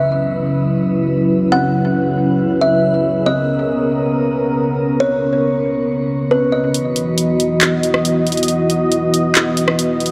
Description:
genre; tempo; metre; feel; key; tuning
hip hop, atmospheric cloud-rap; 138 BPM; 4/4; half-time; unclear; A4 = 440 Hz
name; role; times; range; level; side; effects
kalimba; melody; 0.0-6.7 s; B4 to F#5; -22 LUFS; equal; low-pass filter, tape echo
dark analog pad; sustained chords; 0.0-10.1 s; C#3 to D#5; -18 LUFS; equal; chorus
smooth R&B drum kit; drums; 6.7-10.1 s; handclaps, hi-hat, rim click; -20 LUFS; equal; none
room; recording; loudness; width
light reverb, digital ambience; none; -16 LUFS; mono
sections
0.0-6.7 A section; 6.7-10.1 B section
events
kick muted 6.7-10.1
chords
0.0 C#m7; 3.3 Bmaj9; 6.7 Badd11/E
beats
0.22 0.66 1.09 | 1.53 1.96 2.40 2.83 | 3.27 3.70 4.13 4.57 | 5.00 5.44 5.87 6.31 | 6.74 7.18 7.61 8.05 | 8.48 8.92 9.35 9.79

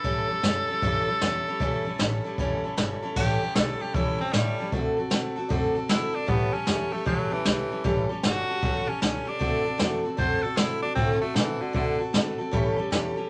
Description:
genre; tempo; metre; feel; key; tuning
rockabilly; 154 BPM; 4/4; swing 65% on 8ths; A mixolydian; A4 = 443 Hz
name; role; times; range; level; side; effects
edgy tenor saxophone; melody; 0.0-12.0 s; D3 to C5; -32 LUFS; equal; none
picked steel-string acoustic guitar; accompaniment; 0.0-13.3 s; A2 to A4; -31 LUFS; equal; none
upright bass; bass; 0.0-13.2 s; F#1 to C3; -35 LUFS; equal; none
jazz brush drum kit; drums; 0.0-13.0 s; crash cymbal, hi-hat, kick drum, snare drum; -30 LUFS; equal; none
room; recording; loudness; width
moderate large studio reverb, RT60 0.9 s; nothing above 10.7 kHz; -26 LUFS; mono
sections
0.0-3.2 A section; 3.2-13.3 B section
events
tenor saxophone solo 3.2-13.3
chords
0.0 A7; 4.7 D7; 6.3 A7; 9.4 D7; 12.5 A7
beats
| 0.04 0.43 0.82 1.21 | 1.60 1.99 2.38 2.77 | 3.16 3.55 3.94 4.33 | 4.72 5.11 5.50 5.89 | 6.28 6.67 7.06 7.45 | 7.84 8.23 8.62 9.01 | 9.40 9.79 10.18 10.57 | 10.96 11.36 11.74 12.14 | 12.53 12.92

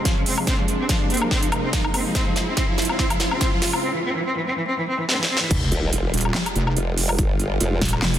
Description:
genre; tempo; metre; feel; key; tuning
heavy wobble dubstep; 143 BPM; 4/4; swing 55% on 16ths, half-time; F minor; A4 = 440 Hz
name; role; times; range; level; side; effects
supersaw pad; sustained chords; 0.0-8.2 s; F2 to F4; -30 LUFS; equal; sidechain pumping
riser and sub drop; sound effects; 0.0-7.2 s; none; -29 LUFS; right 1 dB; none
rich cello; melody; 0.1-5.5 s; E3 to C4; -26 LUFS; equal; ping-pong delay
big-room dance drum kit; drums; 0.1-8.2 s; crash cymbal, handclaps, hi-hat, snare drum, woodblock; -24 LUFS; equal; high-pass filter on hats, soft clipping on snare, high-pass filter on snare, high-pass filter on perc, high-pass filter on cymbals
electronic kick drum; drums; 0.1-7.9 s; none; -24 LUFS; equal; none
wobble bass; bass; 5.5-8.2 s; Eb1 to F1; -22 LUFS; equal; chorus, overdrive
formant-sweep wobble bass; bass; 5.7-7.8 s; Eb1 to G1; -22 LUFS; equal; chorus, overdrive
room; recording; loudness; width
light reverb; dense, heavily limited modern master; -19 LUFS; side -11 dB against mid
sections
0.0-5.5 A section; 5.5-8.2 B section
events
build-up 0.0-5.5; drum fill 0.0-3.8, 5.1-5.5; riser 0.0-3.8; filter sweep on supersaw synth 0.0-5.5; drop 5.5-8.2; impact 5.5-7.2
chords
0.5 Abadd9; 2.1 Db; 3.8 N.C.; 5.5 Fmadd9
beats
0.05 | 0.47 0.89 1.31 1.73 | 2.15 2.57 2.99 3.41 | 3.83 4.25 4.67 5.09 | 5.51 5.93 6.35 6.77 | 7.18 7.61 8.03

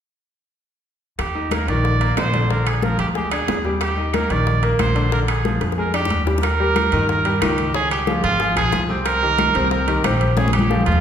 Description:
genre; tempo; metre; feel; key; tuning
latin, salsa; 183 BPM; 4/4; straight; Eb major; A4 = 440 Hz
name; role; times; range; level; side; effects
bright trumpet; melody; 1.2-11.0 s; F4 to D5; -22 LUFS; right 4 dB; none
upright bass; bass; 1.2-11.0 s; Ab1 to G2; -22 LUFS; equal; none
bongos; percussion; 1.2-11.0 s; none; -30 LUFS; left 5 dB; none
claves; percussion; 1.2-10.7 s; none; -34 LUFS; left 3 dB; none
congas; percussion; 1.2-11.0 s; none; -27 LUFS; left 2 dB; none
timbales; percussion; 1.2-11.0 s; none; -29 LUFS; right 5 dB; none
bright grand piano; accompaniment; 1.3-11.0 s; C3 to Eb5; -23 LUFS; left 1 dB; none
room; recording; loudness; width
wet recital hall reverb, RT60 1.5 s; recorded in a church or concert hall; -17 LUFS; side -8 dB against mid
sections
1.2-6.4 A section; 6.4-11.0 B section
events
drum fill 5.6-6.4, 10.4-11.0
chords
1.2 Ebmaj7; 2.5 Bb6; 3.8 Ebmaj7; 5.1 Bb6; 6.4 Eb; 7.7 Db; 9.1 Cm7; 10.4 Bbm7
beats
| 1.19 1.52 1.84 2.17 | 2.50 2.83 3.16 3.48 | 3.81 4.14 4.47 4.79 | 5.12 5.45 5.78 6.11 | 6.43 6.76 7.09 7.42 | 7.75 8.07 8.40 8.73 | 9.06 9.39 9.71 10.04 | 10.37 10.70

